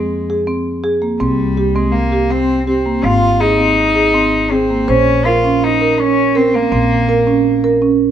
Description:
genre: contemporary instrumental, chamber music in an uneven meter.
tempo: 164 BPM.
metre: 5/4.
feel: straight.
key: unclear.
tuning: A4 = 440 Hz.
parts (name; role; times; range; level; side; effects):
rich cello; melody; 0.0-7.6 s; G3 to F4; -16 LUFS; left 2 dB; none.
marimba with medium mallets; arpeggios; 0.0-8.1 s; Bb3 to C5; -15 LUFS; right 4 dB; none.
upright bass; bass; 0.0-8.1 s; Ab1 to F2; -20 LUFS; left 1 dB; none.
room: light reverb.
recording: none.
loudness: -12 LUFS.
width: side -10 dB against mid.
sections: 0.0-8.1 A section.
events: none.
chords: 0.0 Fm; 1.2 C5; 3.0 Ab; 4.9 Bbmadd9.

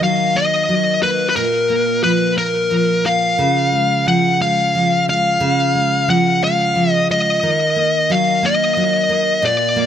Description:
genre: six-eight pop ballad.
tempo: 60 BPM (dotted quarters).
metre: 6/8.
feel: straight.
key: Eb minor.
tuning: A4 = 441 Hz.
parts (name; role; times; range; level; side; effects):
fuzz lead guitar; melody; 0.0-9.9 s; Bb4 to Gb5; -15 LUFS; left 2 dB; distortion, tape echo.
nylon-string guitar; accompaniment; 0.0-9.9 s; Bb2 to Bb3; -18 LUFS; right 1 dB; none.
room: light reverb.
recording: none.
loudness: -14 LUFS.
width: side -9 dB against mid.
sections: 0.0-9.9 A section.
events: none.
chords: 0.0 Ebm; 1.4 Bb5; 3.4 Db; 7.4 Ebm.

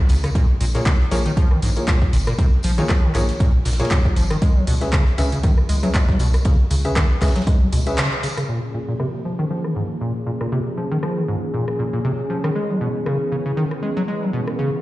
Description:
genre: acid house.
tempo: 118 BPM.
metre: 4/4.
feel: swing 56% on 16ths.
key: unclear.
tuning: A4 = 440 Hz.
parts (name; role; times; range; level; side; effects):
acid bass, square; riff; 0.1-14.7 s; Ab2 to Ab3; -23 LUFS; equal; tube saturation, analog chorus, tape echo.
saturated sub bass; bass; 0.1-7.9 s; Ab1 to Db2; -20 LUFS; equal; sidechain pumping.
punchy analog drum machine; drums; 0.1-14.6 s; handclaps, hi-hat, rim click; -28 LUFS; equal; overdrive, low-pass filter on hats, studio reverb, low-pass filter on snare.
tight metal drum kit; drums; 0.1-8.4 s; ride cymbal, snare drum; -39 LUFS; right 1 dB; none.
tambourine; percussion; 0.1-8.5 s; none; -36 LUFS; left 1 dB; none.
electronic kick drum; drums; 0.4-7.6 s; none; -17 LUFS; equal; overdrive, studio reverb.
warm grand piano; stabs; 0.7-8.0 s; Bb3 to Fb5; -27 LUFS; left 1 dB; tape echo.
warm analog pad; sustained chords; 8.5-14.8 s; Fb3 to Ab4; -26 LUFS; equal; chorus, sidechain pumping.
room: moderate lush hall reverb, RT60 1.8 s.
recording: played on a big sound system in a bare room, stone room reverb, nothing above 10.3 kHz.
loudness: -17 LUFS.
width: side -17 dB against mid.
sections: 0.0-8.5 A section; 8.5-14.8 B section.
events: break 8.0-8.5; band accent 8.0; filter sweep on drum 8.5-14.8.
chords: 0.4 Bb7(no3); 4.4 Db7(no3); 8.5 Bbm7; 12.6 Dbm7.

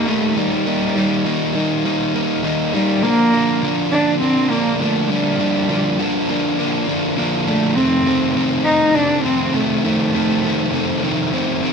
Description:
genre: rock.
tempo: 101 BPM.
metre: 4/4.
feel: straight.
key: unclear.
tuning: A4 = 440 Hz.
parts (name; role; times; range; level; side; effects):
muted cello; melody; 0.0-11.0 s; G3 to Eb4; -18 LUFS; equal; slapback echo.
overdriven semi-hollow guitar; riff; 0.0-11.7 s; F2 to Eb4; -18 LUFS; equal; none.
room: moderate large studio reverb, RT60 1.1 s, small room ambience.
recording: none.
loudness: -15 LUFS.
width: side -6 dB against mid.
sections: 0.0-11.7 A section.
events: none.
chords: 0.0 Eb; 3.0 Bb/D; 7.8 F7.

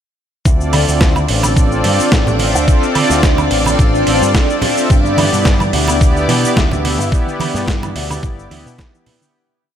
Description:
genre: nu-disco, nu disco.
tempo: 108 BPM.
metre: 4/4.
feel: swing 54% on 16ths.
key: D dorian.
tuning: A4 = 439 Hz.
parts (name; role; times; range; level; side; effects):
string machine, full ensemble; sustained chords; 0.4-9.4 s; D4 to D5; -20 LUFS; equal; ensemble chorus, vintage 12-bit sampler grit, sidechain pumping.
picked electric bass with an envelope filter; bass; 0.5-8.8 s; G1 to B2; -18 LUFS; equal; none.
dusty soul sampler-style drum kit; drums; 0.5-9.3 s; cabasa, hi-hat, snare drum, woodblock; -19 LUFS; right 1 dB; overdrive.
electronic kick drum; drums; 0.5-8.9 s; none; -13 LUFS; equal; overdrive.
congas; percussion; 0.7-9.2 s; none; -22 LUFS; right 3 dB; none.
soft round pluck; arpeggios; 4.9-9.3 s; B2 to E3; -26 LUFS; right 3 dB; none.
room: digital ambience.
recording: none.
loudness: -11 LUFS.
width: side -9 dB against mid.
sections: 0.5-9.3 drop.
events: drop 0.5-9.3; fade-out 6.4-9.3.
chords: 0.5 Dm7; 4.9 G6.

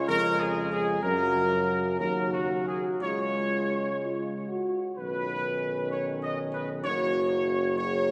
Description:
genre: classical.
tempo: 58-65 BPM.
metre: 4/4.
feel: straight.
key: unclear.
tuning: A4 = 437 Hz.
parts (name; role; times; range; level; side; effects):
clear trumpet section; melody; 0.0-8.1 s; Gb4 to Eb5; -31 LUFS; equal; none.
clear trombone section; sustained chords; 0.0-8.1 s; Db3 to Db4; -37 LUFS; equal; none.
mellow French horn section; sustained chords; 0.0-8.1 s; Db4 to Ab4; -34 LUFS; equal; none.
clear tuba; bass; 0.0-8.1 s; Gb1 to Gb2; -36 LUFS; equal; none.
room: wet church reverb, RT60 3.6 s.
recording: heard from further back in the room.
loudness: -28 LUFS.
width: mono.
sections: 0.0-5.0 A section; 5.0-8.1 B section.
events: none.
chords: 0.0 Db; 1.0 Gb; 3.0 Db; 5.0 Cbadd9; 6.9 Gb.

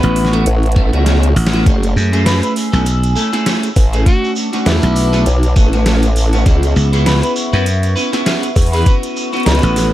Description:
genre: glitch hop.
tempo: 100 BPM.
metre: 4/4.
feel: swing 57% on 16ths.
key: F# minor.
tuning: A4 = 442 Hz.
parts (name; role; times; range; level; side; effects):
overdriven harmonica; melody; 0.0-9.9 s; B3 to B4; -22 LUFS; equal; digital delay.
dark analog pad; sustained chords; 0.0-9.9 s; A3 to E6; -25 LUFS; left 1 dB; chorus, phaser, sidechain pumping.
clean electric guitar; stabs; 0.0-9.9 s; A3 to B4; -19 LUFS; equal; analog chorus, sidechain pumping, digital delay.
glassy slap bass; bass; 0.0-9.9 s; A1 to F#2; -13 LUFS; equal; none.
dubstep drum kit; drums; 0.0-9.9 s; hi-hat, snare drum; -20 LUFS; equal; none.
formant-sweep wobble bass; bass; 0.5-9.6 s; F#1 to E2; -13 LUFS; equal; chorus.
electronic kick drum; drums; 0.8-9.0 s; none; -11 LUFS; equal; none.
shekere; percussion; 1.7-9.9 s; none; -27 LUFS; right 2 dB; none.
room: little or no reverb.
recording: vinyl crackle.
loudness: -11 LUFS.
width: side -14 dB against mid.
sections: 0.0-9.9 A section.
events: drum fill 1.1-1.7.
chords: 0.0 A6; 1.7 F#m9; 4.1 Bm7; 6.5 C#m7; 8.9 A6.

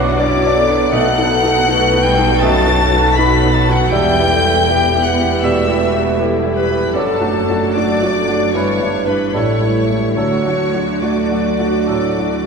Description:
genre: classical, romantic movement for piano and orchestra.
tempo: 69-83 BPM.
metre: 4/4.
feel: rubato.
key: D major.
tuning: A4 = 444 Hz.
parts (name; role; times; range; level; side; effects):
bright concert grand piano; melody; 0.0-12.5 s; B1 to D5; -18 LUFS; equal; none.
clear symphonic violin section; melody; 0.0-12.5 s; F#5 to B6; -23 LUFS; left 3 dB; none.
bright clarinet; second line; 0.0-12.5 s; F#4 to B5; -23 LUFS; left 1 dB; none.
mellow cor anglais; second line; 0.0-12.2 s; A4 to E5; -28 LUFS; right 1 dB; none.
silver concert flute; second line; 0.0-12.5 s; F#4 to B5; -24 LUFS; left 3 dB; none.
warm symphonic violin section; second line; 0.0-12.5 s; F#4 to B5; -25 LUFS; left 2 dB; none.
mellow bassoon; accompaniment; 0.0-12.2 s; E3 to A3; -25 LUFS; right 2 dB; none.
rich symphonic viola section; accompaniment; 0.0-12.5 s; E3 to G4; -24 LUFS; right 2 dB; none.
mellow French horn section; sustained chords; 0.0-12.5 s; E4 to B4; -22 LUFS; left 1 dB; none.
rich symphonic cello section; bass; 0.0-12.5 s; E2 to D3; -24 LUFS; right 3 dB; none.
rich symphonic double bass section; bass; 0.0-12.5 s; E1 to D2; -22 LUFS; right 1 dB; none.
room: wet church reverb, RT60 3.0 s.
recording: recorded in a church or concert hall.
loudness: -12 LUFS.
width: side -5 dB against mid.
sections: 0.0-12.5 A section.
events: none.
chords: 0.0 Bm; 0.9 B7; 3.9 Em; 7.0 D/F#; 8.5 Em7/G; 9.3 A7; 10.2 D.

